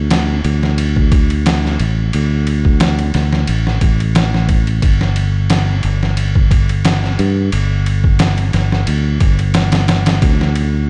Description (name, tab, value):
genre	trip hop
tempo	89 BPM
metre	4/4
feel	swing 54% on 16ths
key	unclear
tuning	A4 = 439 Hz
part	fingered electric bass	bass	0.0-10.9 s	G1 to G2	-17 LUFS	equal	tube saturation
part	trip hop sampler-style drum kit	drums	0.1-10.7 s	kick drum, ride cymbal, snare drum	-18 LUFS	equal	none
room	light reverb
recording	nothing above 11.0 kHz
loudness	-14 LUFS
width	mono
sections	0.0-10.9 A section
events	none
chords	none